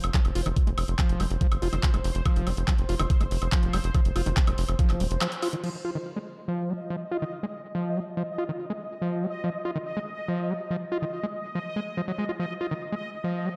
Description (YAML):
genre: psychedelic trance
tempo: 142 BPM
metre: 4/4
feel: straight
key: unclear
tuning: A4 = 440 Hz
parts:
  - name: bubbling stepped-filter texture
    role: sustained chords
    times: 0.0-13.6 s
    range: C5 to Eb5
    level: -39 LUFS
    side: equal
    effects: chorus, built-in reverb, sidechain pumping
  - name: tight sequencer bass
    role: bass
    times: 0.0-5.2 s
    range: Eb1 to Gb1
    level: -30 LUFS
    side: equal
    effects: none
  - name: drum and bass drum kit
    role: drums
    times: 0.0-5.7 s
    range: crash cymbal, handclaps, hi-hat, woodblock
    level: -35 LUFS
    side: equal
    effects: overdrive, small room ambience
  - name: screaming distorted acid line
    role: riff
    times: 0.1-13.5 s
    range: Eb3 to F4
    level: -33 LUFS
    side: equal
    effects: distortion, chorus, sidechain pumping, digital delay
  - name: electronic kick drum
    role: drums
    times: 0.1-4.9 s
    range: none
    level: -26 LUFS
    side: equal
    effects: overdrive, small room ambience
room: moderate lush hall reverb, RT60 1.5 s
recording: dark, warm production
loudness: -28 LUFS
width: mono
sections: 0.0-5.6 A section; 5.6-13.6 B section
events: break 5.2-5.6; band accent 5.2; filter sweep on acid bass 5.6-13.6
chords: 0.0 F5; 5.6 Ebsus2